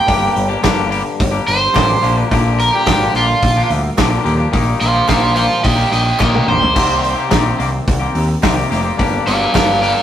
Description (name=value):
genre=indie rock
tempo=108 BPM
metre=4/4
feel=straight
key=C minor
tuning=A4 = 440 Hz
part: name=overdriven semi-hollow guitar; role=melody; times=0.0-10.0 s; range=F4 to G5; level=-16 LUFS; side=right 2 dB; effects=none
part: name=string machine, cellos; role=sustained chords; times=0.0-10.0 s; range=D3 to Bb4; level=-29 LUFS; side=equal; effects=none
part: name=twangy electric guitar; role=riff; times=0.0-10.0 s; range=G2 to G4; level=-19 LUFS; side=left 4 dB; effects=none
part: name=growling picked electric bass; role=bass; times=0.1-9.9 s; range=F1 to Eb2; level=-18 LUFS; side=equal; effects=overdrive
part: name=loose indie drum kit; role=drums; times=0.1-10.0 s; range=crash cymbal, hi-hat, kick drum, snare drum, toms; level=-18 LUFS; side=equal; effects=none
part: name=group handclap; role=percussion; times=0.6-9.7 s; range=none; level=-32 LUFS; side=right 2 dB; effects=none
room=wet stone room reverb, RT60 1.3 s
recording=rough rehearsal-room recording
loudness=-12 LUFS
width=side -10 dB against mid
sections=0.0-10.0 A section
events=overdriven electric guitar solo 0.0-10.0; drum fill 6.2-6.8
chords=0.1 Gm; 2.0 Bb6; 4.5 Eb/Bb; 6.8 Cm7; 9.0 Gm